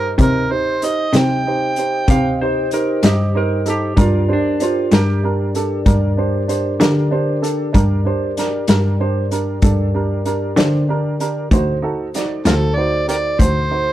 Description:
slow blues; 64 BPM (dotted quarters); 12/8; straight; G harmonic minor; A4 = 443 Hz
overdriven harmonica; melody; 0.0-2.4, 12.5-13.9 s; C4 to G5; -20 LUFS; right 2 dB
warm upright piano; accompaniment; 0.0-13.9 s; D4 to Eb5; -22 LUFS; right 5 dB
mellow tonewheel organ; sustained chords; 0.0-13.9 s; D4 to Eb5; -26 LUFS; left 5 dB; slow rotary speaker
rich cello; bass; 0.0-13.9 s; D2 to D3; -18 LUFS; equal
vintage drum kit; drums; 0.2-13.5 s; hi-hat, kick drum, snare drum; -19 LUFS; left 1 dB
electric slide guitar; second line; 2.1-5.2 s; D4 to F5; -21 LUFS; right 3 dB
little or no reverb; -15 LUFS; side -13 dB against mid
0.0-13.9 A section
0.0 Cm; 4.0 Gm; 11.5 D7b9

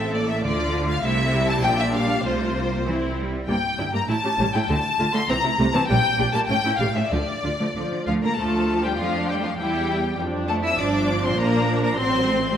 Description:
quick classical-period movement for string orchestra; 100 BPM; 2/4; rubato; D minor from 3.5 s; A4 = 439 Hz
warm chamber violin section; melody; 0.0-12.6 s; C5 to E6; -26 LUFS; left 5 dB
rich studio viola section; accompaniment; 0.0-12.6 s; C3 to A4; -25 LUFS; right 1 dB
clear chamber cello section; bass; 0.0-12.6 s; G2 to E4; -27 LUFS; right 1 dB
clear chamber double bass section; bass; 0.0-12.6 s; G1 to F2; -28 LUFS; right 2 dB
clear studio violin section; second line; 0.1-12.6 s; F4 to C6; -28 LUFS; left 1 dB
moderate scoring stage reverb, RT60 2.0 s; -20 LUFS; side -9 dB against mid
0.0-8.4 A section; 8.4-12.6 B section
0.4 Dm; 1.0 Am/C; 1.6 Bb; 2.3 F/C; 2.9 C; 3.5 Edim/G (rootless); 4.1 A7; 4.7 D5; 5.3 Am/C; 5.9 Gm; 6.5 A7; 7.1 Dm; 9.6 Em; 10.2 Dm/F; 10.8 Gm7; 12.0 Am6

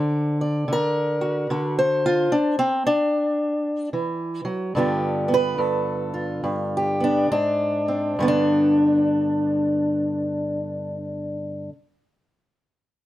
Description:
acoustic country blues, solo or duo; 67-75 BPM; 4/4; swing 64% on 8ths; G mixolydian; A4 = 442 Hz
fingerpicked acoustic archtop guitar; solo; 0.0-11.7 s; G2 to D5; -20 LUFS; equal
light reverb; -20 LUFS; side -14 dB against mid
0.0-8.2 A section; 8.2-11.8 B section
slowing down 1.5-8.2
0.0 D7; 4.7 G7; 7.3 Ab; 8.2 G

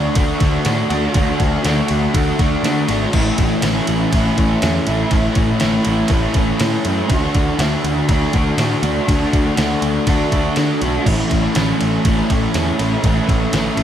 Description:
rock, shoegaze and dream pop; 121 BPM; 4/4; straight; A major; A4 = 441 Hz
crunchy overdriven guitar; riff; 0.0-13.8 s; A2 to F#4; -17 LUFS; equal; lush chorus
fuzz picked electric bass; bass; 0.0-13.8 s; G#1 to D3; -21 LUFS; equal; overdrive
detuned 8-bit digital drum machine; drums; 0.2-13.8 s; crash cymbal, kick drum, ride cymbal, snare drum; -20 LUFS; equal
moderate huge ambient reverb, RT60 8.4 s; dreamy mix soaked in reverb; -14 LUFS; side -10 dB against mid
0.0-13.8 A section
0.0 D; 3.1 A; 7.1 D; 11.1 A

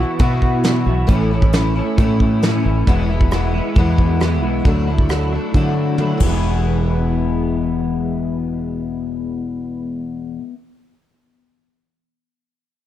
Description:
folk rock and heartland rock; 135 BPM; 4/4; straight; E major; A4 = 440 Hz
picked twelve-string acoustic guitar; accompaniment; 0.0-10.6 s; E2 to F#4; -22 LUFS; left 5 dB; plate reverb
electric guitar through a small old amp; riff; 0.0-10.4 s; E2 to F#4; -24 LUFS; right 2 dB; ensemble chorus
fingered electric bass; bass; 0.0-10.4 s; E1 to D3; -20 LUFS; equal
soft brush drum kit; drums; 0.2-6.3 s; hi-hat, kick drum, ride cymbal, rim click, snare drum, toms; -18 LUFS; equal
little or no reverb; dark, warm production; -15 LUFS; side -12 dB against mid
0.0-6.4 A section; 6.4-10.0 B section
drum fill 6.0-6.4
0.0 Bsus4; 1.1 A; 2.9 E; 4.6 Dadd9; 6.2 E

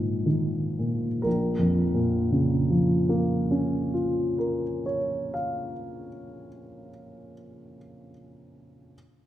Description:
classical, romantic nocturne for solo piano; 22 BPM (dotted quarters); 6/8; rubato; Bb minor; A4 = 441 Hz
warm upright piano; solo; 0.0-9.0 s; Bb1 to F5; -24 LUFS; equal
wet concert hall reverb, RT60 1.8 s; recorded in a church or concert hall; -23 LUFS; side -13 dB against mid
0.0-1.2 A section; 1.2-6.6 B section
0.0 Eb5/Bb; 1.2 Bbm

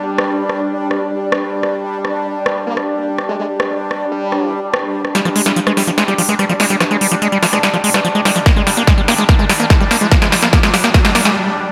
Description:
psychedelic trance; 145 BPM; 4/4; straight; A4 = 441 Hz
formant-sweep wobble bass; second line; 0.0-4.5 s; G3 to Bb3; -28 LUFS; equal; chorus, sidechain pumping, high-pass filter, tape echo
bubbling stepped-filter texture; sustained chords; 0.0-11.7 s; G3 to D4; -22 LUFS; equal; chorus, built-in reverb, sidechain pumping
big-room dance drum kit; drums; 0.2-11.3 s; hi-hat, rim click, snare drum; -20 LUFS; equal; high-pass filter on snare, low-pass filter on snare, high-pass filter on hats, low-pass filter on hats, high-pass filter on room, low-pass filter on room
screaming distorted acid line; riff; 5.2-11.3 s; F3 to Bb3; -18 LUFS; equal; distortion, chorus, sidechain pumping, tape echo
riser; sound effects; 7.6-11.4 s; -27 LUFS; equal
tight sequencer bass; bass; 5.3-11.3 s; G1 to Ab2; -29 LUFS; equal
electronic kick drum; drums; 8.5-11.0 s; -14 LUFS; equal
moderate lush hall reverb, RT60 2.3 s; -15 LUFS; mono
0.0-5.2 A section; 5.2-11.7 B section
build-up 5.2-11.7; drum fill 5.2-11.4; filter sweep on acid bass 5.2-11.7; riser 7.6-11.4; break 11.4-11.7
0.0 G5; 8.5 Ab5

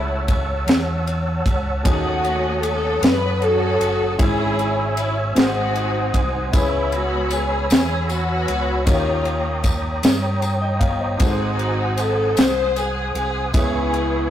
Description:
slow gospel; 51 BPM (dotted quarters); 6/8; straight; C# minor; A4 = 439 Hz
warm studio string section; melody; 0.0-14.3 s; G#3 to B#4; -22 LUFS; left 1 dB
clear concert grand piano; accompaniment; 0.0-14.3 s; G#2 to A#5; -28 LUFS; left 2 dB
mellow tonewheel organ; sustained chords; 0.0-14.3 s; B4 to E6; -26 LUFS; right 1 dB; slow rotary speaker, chorus vibrato
fingered electric bass; bass; 0.0-14.3 s; F#1 to G2; -24 LUFS; equal
crisp fusion drum kit; drums; 0.3-14.1 s; kick drum, ride cymbal, snare drum; -21 LUFS; equal
tambourine; percussion; 6.5-13.9 s; -36 LUFS; left 3 dB
moderate stone room reverb, RT60 1.2 s; rough rehearsal-room recording, tube saturation; -17 LUFS; side -11 dB against mid
0.0-14.3 A section
0.0 F#m7/C#; 1.8 D#m7b5; 4.2 C#m/G#; 5.4 G#7; 6.5 C#m7; 8.9 D#7; 11.2 G#7; 13.5 C#m7

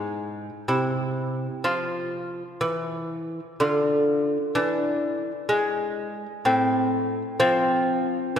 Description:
classical, baroque-style dance for lute; 62 BPM; 3/4; rubato; A4 = 440 Hz
lute; solo; 0.0-8.4 s; G#2 to F4; -23 LUFS; equal
wet church reverb, RT60 3.1 s; recorded in a church or concert hall; -22 LUFS; side -8 dB against mid
0.0-8.4 A section
0.0 E; 0.7 C; 1.7 N.C.; 3.6 Dm; 4.6 E7; 6.5 Am; 7.4 F5

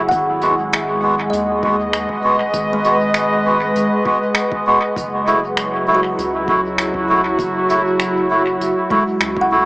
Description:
ambient dub; 99 BPM; 4/4; straight; A4 = 440 Hz
warbly tape-like pad; sustained chords; 0.0-9.7 s; F#3 to F#5; -18 LUFS; equal; chorus, built-in reverb
kalimba; arpeggios; 0.0-9.7 s; G#3 to F#5; -24 LUFS; equal; dub echo
soft dub sub bass; bass; 0.0-9.7 s; D#1 to D#2; -32 LUFS; equal
electronic kick drum; drums; 0.1-9.5 s; -30 LUFS; equal; overdrive
jazz brush drum kit; drums; 0.1-9.3 s; finger snaps, hi-hat; -25 LUFS; equal; dub echo
melodica; stabs; 0.4-9.6 s; G#3 to F#4; -18 LUFS; equal; dub echo
moderate spring reverb, RT60 2.3 s; echo-heavy mix, small speaker sound; -14 LUFS; side -23 dB against mid
0.0-9.7 A section
0.1 G#m7; 5.0 F#m7

